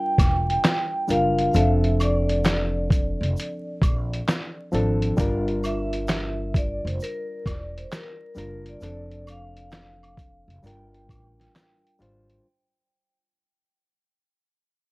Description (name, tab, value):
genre	lo-fi hip hop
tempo	66 BPM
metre	4/4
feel	swing 65% on 16ths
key	G dorian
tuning	A4 = 440 Hz
part	vibraphone with medium mallets	melody	0.0-12.0 s	Bb4 to G5	-29 LUFS	equal	low-pass filter
part	bright reed electric piano	accompaniment	0.0-12.5 s	F3 to C5	-28 LUFS	left 1 dB	overdrive, low-pass filter, plate reverb
part	upright bass	bass	0.2-12.4 s	E1 to Bb1	-26 LUFS	equal	none
part	lo-fi sampler-style drum kit	drums	0.2-12.4 s	handclaps, hi-hat, kick drum, snare drum	-24 LUFS	equal	none
part	tube shaker and woodblock	percussion	0.2-12.3 s	none	-38 LUFS	right 1 dB	none
room	light reverb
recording	worn, warbling old tape, cassette tape, vinyl crackle, warbly pitch drift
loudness	-21 LUFS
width	side -22 dB against mid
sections	0.0-12.5 A section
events	fade-out 0.0-12.5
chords	0.0 Gm7; 1.5 F6; 5.2 Gm7; 8.8 F6; 10.6 Gm7